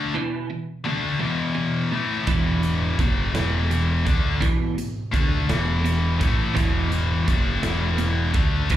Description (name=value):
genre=quiet-loud alternative rock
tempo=56 BPM (dotted quarters)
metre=6/8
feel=straight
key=unclear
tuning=A4 = 440 Hz
part: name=clean electric guitar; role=arpeggios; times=0.0-8.8 s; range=E2 to E3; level=-29 LUFS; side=right 4 dB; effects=ensemble chorus
part: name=scooped high-gain guitar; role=riff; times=0.0-8.7 s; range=E2 to D4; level=-24 LUFS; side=left 3 dB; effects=distortion
part: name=fuzz fingered electric bass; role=bass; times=2.3-8.7 s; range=E1 to D2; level=-24 LUFS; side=right 1 dB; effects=overdrive
part: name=big rock drum kit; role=drums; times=2.3-8.8 s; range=hi-hat, kick drum, snare drum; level=-25 LUFS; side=right 1 dB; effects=none
room=light reverb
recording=live gig heard through the venue's PA, club reverb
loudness=-20 LUFS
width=side -12 dB against mid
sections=0.0-8.8 A section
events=none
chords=0.0 E5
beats=| 0.15 1.22 | 2.29 3.36 | 4.43 5.50 | 6.57 7.64 | 8.71